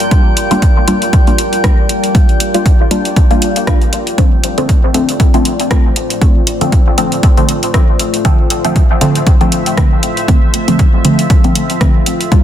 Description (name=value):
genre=dub techno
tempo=118 BPM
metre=4/4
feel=swing 56% on 16ths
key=D minor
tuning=A4 = 437 Hz
part: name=deep dark ambient pad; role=sustained chords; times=0.0-12.4 s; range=G3 to E5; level=-20 LUFS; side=left 2 dB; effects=chorus, built-in reverb, sidechain pumping
part: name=deep house drum kit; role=drums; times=0.0-12.4 s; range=hi-hat, rim click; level=-19 LUFS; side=equal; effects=overdrive, studio reverb
part: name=drifting glass-harmonics texture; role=texture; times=0.0-4.2 s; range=G5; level=-22 LUFS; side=equal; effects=chorus, built-in reverb, sidechain pumping
part: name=filtered dub chord stab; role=stabs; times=0.1-12.4 s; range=D3 to F4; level=-15 LUFS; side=equal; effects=phaser, sidechain pumping, dub echo
part: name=electronic kick drum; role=drums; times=0.1-12.4 s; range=none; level=-10 LUFS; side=equal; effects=overdrive, studio reverb
room=light reverb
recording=dense, heavily limited modern master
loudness=-9 LUFS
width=side -10 dB against mid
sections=0.0-4.2 A section; 4.2-12.4 A section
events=none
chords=0.0 Gm7; 4.2 Dm7